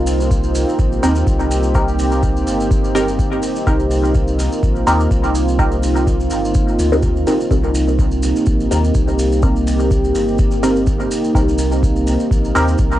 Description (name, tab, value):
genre	dub techno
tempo	125 BPM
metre	4/4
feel	swing 55% on 16ths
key	C minor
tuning	A4 = 440 Hz
part	deep dark ambient pad	sustained chords	0.0-13.0 s	Bb3 to Bb4	-19 LUFS	right 1 dB	chorus, built-in reverb, sidechain pumping, cassette tape
part	filtered dub chord stab	stabs	0.0-12.7 s	C4 to Bb4	-20 LUFS	equal	phaser, sidechain pumping, cassette tape, dub echo
part	warm sub bass	bass	0.0-13.0 s	G1 to Eb2	-20 LUFS	equal	sidechain pumping
part	electronic hi-hat	drums	0.1-12.7 s	none	-40 LUFS	left 1 dB	none
part	maracas	percussion	0.1-13.0 s	none	-33 LUFS	right 2 dB	none
part	electronic kick drum	drums	0.3-12.9 s	none	-18 LUFS	equal	cassette tape
room	light reverb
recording	home recording on cassette, nothing above 10.3 kHz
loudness	-14 LUFS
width	side -13 dB against mid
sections	0.0-13.0 A section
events	none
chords	0.0 Cm7